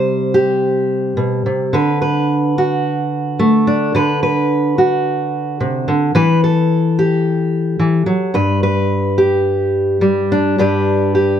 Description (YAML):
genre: folk, solo fingerstyle acoustic guitar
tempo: 108 BPM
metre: 4/4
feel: straight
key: G major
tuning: A4 = 440 Hz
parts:
  - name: fingerpicked steel-string acoustic guitar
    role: solo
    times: 0.0-11.4 s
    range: G2 to C5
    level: -13 LUFS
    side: equal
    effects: none
room: moderate studio reverb, RT60 0.7 s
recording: dark, warm production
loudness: -13 LUFS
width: side -9 dB against mid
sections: 0.0-10.6 A section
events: none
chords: 0.0 C5; 1.7 D6; 6.2 Em; 8.3 G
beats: 0.05 0.60 1.17 | 1.73 2.29 2.85 3.40 | 3.95 4.51 5.06 5.61 | 6.15 6.70 7.25 7.79 | 8.34 8.89 9.45 10.01 | 10.58 11.13